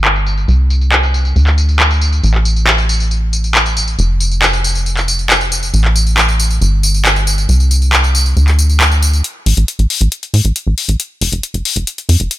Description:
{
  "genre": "uplifting trance",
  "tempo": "137 BPM",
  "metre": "4/4",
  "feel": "straight",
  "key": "A minor",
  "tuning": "A4 = 440 Hz",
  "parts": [
    { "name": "tight sequencer bass", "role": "bass", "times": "0.0-12.3 s", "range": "F1 to A2", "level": "-12 LUFS", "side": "equal", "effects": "tube saturation" },
    { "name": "punchy analog drum machine", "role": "drums", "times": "0.0-12.4 s", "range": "handclaps, hi-hat, tambourine", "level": "-14 LUFS", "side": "left 1 dB", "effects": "overdrive, low-pass filter on perc, low-pass filter on snare, low-pass filter on hats" }
  ],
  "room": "little or no reverb",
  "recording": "none",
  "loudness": "-11 LUFS",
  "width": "side -15 dB against mid",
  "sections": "0.0-9.2 A section; 9.2-12.4 B section",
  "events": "build-up 9.2-12.4",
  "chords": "none"
}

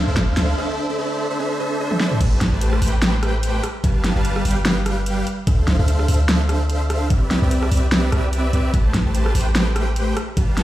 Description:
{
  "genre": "future bass",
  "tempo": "147 BPM",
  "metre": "4/4",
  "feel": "swing 56% on 16ths, half-time",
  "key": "unclear",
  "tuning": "A4 = 437 Hz",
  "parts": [
    { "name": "dense compressed supersaw", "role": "riff", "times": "0.0-10.6 s", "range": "G3 to A5", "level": "-23 LUFS", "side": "equal", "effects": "sidechain pumping, digital delay" },
    { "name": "warm 808-style bass", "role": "bass", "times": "0.0-10.6 s", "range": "G1 to D2", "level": "-20 LUFS", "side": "equal", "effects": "sidechain pumping" },
    { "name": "electronic kick drum", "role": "drums", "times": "0.2-10.5 s", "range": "none", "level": "-19 LUFS", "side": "equal", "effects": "overdrive" },
    { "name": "pop drum kit", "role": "drums", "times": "0.2-10.6 s", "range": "crash cymbal, hi-hat, rim click, snare drum, toms", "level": "-22 LUFS", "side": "equal", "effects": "overdrive" }
  ],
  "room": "light reverb",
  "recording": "played on a big sound system in a bare room, stone room reverb",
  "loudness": "-17 LUFS",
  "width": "side -14 dB against mid",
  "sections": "0.0-2.2 A section; 2.2-10.6 B section",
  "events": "build-up 0.0-2.2; drum fill 0.0-0.6, 1.9-2.2; break 0.6-2.2; drop 2.2-10.6",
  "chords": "0.0 Dm7; 0.6 C; 2.2 Am7; 3.6 G9; 5.3 Dm7; 7.1 Cmaj7; 8.7 Am7"
}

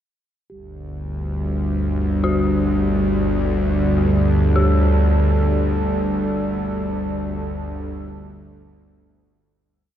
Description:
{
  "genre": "dark ambient drone",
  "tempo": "52 BPM",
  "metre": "4/4",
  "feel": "straight",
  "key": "unclear",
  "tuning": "A4 = 439 Hz",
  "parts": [
    { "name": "deep dark ambient pad", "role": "sustained chords", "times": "1.4-9.7 s", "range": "G3 to A4", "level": "-23 LUFS", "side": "right 1 dB", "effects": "chorus, built-in reverb" },
    { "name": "bowed-like drone", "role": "drone", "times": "0.9-9.9 s", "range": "G1 to D2", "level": "-19 LUFS", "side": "equal", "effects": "built-in reverb" },
    { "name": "bronze singing bowl", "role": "texture", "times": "0.5-9.8 s", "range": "G3 to G4", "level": "-42 LUFS", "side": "equal", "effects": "none" },
    { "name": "dark detuned synth bell", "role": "arpeggios", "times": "2.2-10.0 s", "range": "F#4 to G4", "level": "-28 LUFS", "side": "left 3 dB", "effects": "chorus, diffuse ambient delay" }
  ],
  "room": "wet cathedral reverb, RT60 5.8 s",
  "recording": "in a vast, echoing space, cassette tape",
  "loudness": "-17 LUFS",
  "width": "side -10 dB against mid",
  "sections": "0.5-9.7 A section",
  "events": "fade-out 5.1-9.7",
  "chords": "0.5 G5"
}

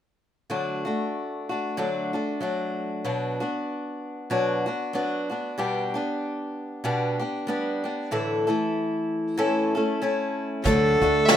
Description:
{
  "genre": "acoustic folk duo or small band",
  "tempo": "95 BPM",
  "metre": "4/4",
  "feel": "swing 57% on 8ths",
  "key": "D major",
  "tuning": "A4 = 438 Hz",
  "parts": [
    { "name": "picked steel-string acoustic guitar", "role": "accompaniment", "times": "0.5-11.4 s", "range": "A2 to A4", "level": "-25 LUFS", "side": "left 1 dB", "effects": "none" },
    { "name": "warm fiddle", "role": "melody", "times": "10.6-11.4 s", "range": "A4 to E5", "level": "-19 LUFS", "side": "right 1 dB", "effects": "none" },
    { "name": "upright bass", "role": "bass", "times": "10.7-11.4 s", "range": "D2", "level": "-25 LUFS", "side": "equal", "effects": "none" },
    { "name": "soft brush drum kit", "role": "drums", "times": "10.7-11.4 s", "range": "hi-hat, kick drum, snare drum", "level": "-22 LUFS", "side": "right 1 dB", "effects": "none" }
  ],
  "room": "moderate studio reverb, RT60 0.6 s",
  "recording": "rough home demo mix",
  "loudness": "-24 LUFS",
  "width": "side -10 dB against mid",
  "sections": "0.5-10.7 A section",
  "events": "none",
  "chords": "0.5 D; 3.0 Bm; 5.6 G/B; 8.1 Asus4; 9.4 A; 10.7 D"
}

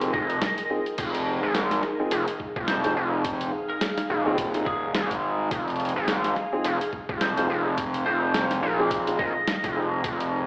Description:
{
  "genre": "glitch hop",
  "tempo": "106 BPM",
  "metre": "4/4",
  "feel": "swing 58% on 16ths",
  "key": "F minor",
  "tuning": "A4 = 439 Hz",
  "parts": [
    { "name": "dark grand piano", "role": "stabs", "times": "0.0-9.8 s", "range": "C4 to Ab4", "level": "-30 LUFS", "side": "equal", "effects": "sidechain pumping, tape echo" },
    { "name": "gritty driven synth bass", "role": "bass", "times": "0.0-10.5 s", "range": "Eb1 to Bb1", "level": "-25 LUFS", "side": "equal", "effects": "tube saturation" },
    { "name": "boom bap sampler-style drum kit", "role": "drums", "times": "0.0-10.3 s", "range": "crash cymbal, hi-hat, snare drum", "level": "-30 LUFS", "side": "equal", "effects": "small room ambience" },
    { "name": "ethereal airy pad", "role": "texture", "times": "0.0-10.5 s", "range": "Eb4 to F5", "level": "-32 LUFS", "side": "equal", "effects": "ensemble chorus, built-in reverb, phaser, sidechain pumping" },
    { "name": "lightly driven lead guitar", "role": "melody", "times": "0.1-9.8 s", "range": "Ab4 to Eb5", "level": "-31 LUFS", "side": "equal", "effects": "vintage 12-bit sampler grit, tape echo" },
    { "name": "electronic kick drum", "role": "drums", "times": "0.1-10.2 s", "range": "none", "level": "-37 LUFS", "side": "equal", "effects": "small room ambience" }
  ],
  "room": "moderate studio ambience, RT60 0.5 s",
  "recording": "played on a big sound system in a bare room, large studio reverb, AM radio sound",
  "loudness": "-23 LUFS",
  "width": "side -36 dB against mid",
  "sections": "0.0-10.5 A section",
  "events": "none",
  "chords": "0.0 Fm7"
}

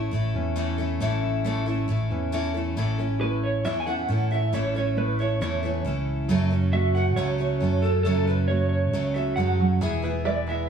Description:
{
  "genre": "indie folk with a building arrangement",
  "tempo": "136 BPM",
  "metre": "4/4",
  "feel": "straight",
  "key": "A major",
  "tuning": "A4 = 440 Hz",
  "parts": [
    { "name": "fingerpicked steel-string acoustic guitar", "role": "accompaniment", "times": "0.0-10.7 s", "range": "A2 to C#5", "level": "-29 LUFS", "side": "right 2 dB", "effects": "none" },
    { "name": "picked steel-string acoustic guitar", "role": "accompaniment", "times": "0.0-10.7 s", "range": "F#2 to A4", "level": "-31 LUFS", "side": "left 3 dB", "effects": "none" },
    { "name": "fingered electric bass", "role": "bass", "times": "0.0-10.7 s", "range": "E1 to A2", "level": "-25 LUFS", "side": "right 1 dB", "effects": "none" },
    { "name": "electric guitar through a small old amp", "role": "melody", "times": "3.2-10.7 s", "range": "A4 to G#5", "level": "-28 LUFS", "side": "right 3 dB", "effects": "tremolo" },
    { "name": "open-back banjo", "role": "arpeggios", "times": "9.8-10.7 s", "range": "G#3 to E5", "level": "-31 LUFS", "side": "right 5 dB", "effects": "none" }
  ],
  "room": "moderate studio reverb, RT60 0.6 s",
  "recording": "band playing live in one room, studio reverb",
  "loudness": "-22 LUFS",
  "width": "side -7 dB against mid",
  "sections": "0.0-2.8 A section; 2.8-10.7 B section",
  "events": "none",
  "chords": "0.0 A; 6.3 F#m; 9.8 E"
}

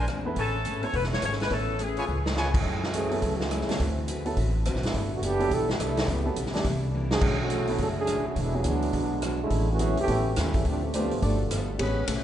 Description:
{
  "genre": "jazz, big band swing",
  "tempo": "210 BPM",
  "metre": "4/4",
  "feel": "swing 62% on 8ths",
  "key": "A major",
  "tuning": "A4 = 440 Hz",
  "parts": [
    { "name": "warm trumpet section", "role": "stabs", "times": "0.0-2.5 s", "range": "F4 to A5", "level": "-36 LUFS", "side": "equal", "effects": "none" },
    { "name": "upright bass", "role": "bass", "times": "0.0-12.2 s", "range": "E1 to F#2", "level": "-29 LUFS", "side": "equal", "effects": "none" },
    { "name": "picked steel-string acoustic guitar", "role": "accompaniment", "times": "0.1-12.2 s", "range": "A2 to B4", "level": "-35 LUFS", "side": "left 3 dB", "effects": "none" },
    { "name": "swinging big-band drum kit", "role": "drums", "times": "0.1-12.2 s", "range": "crash cymbal, hi-hat, kick drum, ride cymbal, rim click, snare drum", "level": "-31 LUFS", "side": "equal", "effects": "none" },
    { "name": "warm baby grand piano", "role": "accompaniment", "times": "0.3-12.0 s", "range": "E3 to E5", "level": "-35 LUFS", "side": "equal", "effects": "none" },
    { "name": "mellow saxophone section", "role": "melody", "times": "0.4-2.4 s", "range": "G#4 to C#5", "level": "-32 LUFS", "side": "left 3 dB", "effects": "none" },
    { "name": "mellow trombone section", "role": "second line", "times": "2.5-11.7 s", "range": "B2 to A4", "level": "-29 LUFS", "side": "right 2 dB", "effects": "none" },
    { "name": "dark saxophone section", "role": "sustained chords", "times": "11.8-12.2 s", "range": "C#4 to B4", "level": "-35 LUFS", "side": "left 2 dB", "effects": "none" }
  ],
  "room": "moderate cathedral reverb, RT60 5.5 s",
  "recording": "recorded in a church or concert hall, nothing above 10.3 kHz",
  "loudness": "-24 LUFS",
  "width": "side -11 dB against mid",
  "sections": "0.0-2.7 A section; 2.7-11.8 B section",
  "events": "drum fill 2.1, 6.9; trombone section solo 2.7-11.8",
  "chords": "0.4 Amaj9; 2.1 C#7; 2.7 F#m9; 3.8 D13; 4.9 G69; 6.1 C#m7b5; 6.7 C9; 7.2 Bm11; 8.4 E9; 9.5 Amaj7; 10.1 A7b13; 10.7 Dm7; 11.2 G9"
}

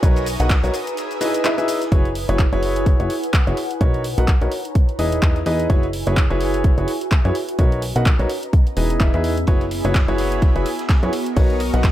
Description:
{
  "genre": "piano house",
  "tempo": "127 BPM",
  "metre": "4/4",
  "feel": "swing 57% on 16ths",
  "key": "F# mixolydian",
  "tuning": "A4 = 440 Hz",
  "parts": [
    { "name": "analog string pad", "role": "sustained chords", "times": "0.0-1.9, 9.5-11.9 s", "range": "G#4 to D#6", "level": "-31 LUFS", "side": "equal", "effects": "ensemble chorus, sidechain pumping" },
    { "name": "warm baby grand piano", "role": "riff", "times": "0.0-11.9 s", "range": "D#4 to F#5", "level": "-23 LUFS", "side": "equal", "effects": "sidechain pumping, ping-pong delay" },
    { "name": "plucky analog bass", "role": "bass", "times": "0.0-11.9 s", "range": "E1 to F#2", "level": "-22 LUFS", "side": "equal", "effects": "sidechain pumping" },
    { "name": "electronic kick drum", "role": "drums", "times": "0.0-11.9 s", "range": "none", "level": "-16 LUFS", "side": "equal", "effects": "none" },
    { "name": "punchy analog drum machine", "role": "drums", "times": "0.0-11.9 s", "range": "handclaps, hi-hat, shaker", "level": "-27 LUFS", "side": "equal", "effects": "overdrive" },
    { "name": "street-band drum kit", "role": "drums", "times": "0.0-1.9, 9.5-11.9 s", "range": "hi-hat, ride cymbal, snare drum", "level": "-38 LUFS", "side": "equal", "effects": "none" },
    { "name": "ethereal airy pad", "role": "texture", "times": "0.0-11.9 s", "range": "B3 to D#6", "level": "-28 LUFS", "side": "equal", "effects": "ensemble chorus, built-in reverb, sidechain pumping" }
  ],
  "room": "studio ambience",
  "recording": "none",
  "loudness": "-16 LUFS",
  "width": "side -13 dB against mid",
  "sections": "0.0-1.9 A section; 1.9-11.9 B section",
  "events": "drop 0.0-1.9; break 1.0-1.9",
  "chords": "0.0 Bmaj9; 0.7 Emaj7; 1.9 F#9sus4; 3.6 Bmaj9; 4.5 Emaj7; 5.7 F#9sus4; 7.4 Bmaj9; 8.3 Emaj7; 9.5 F#9sus4; 11.1 Bmaj9"
}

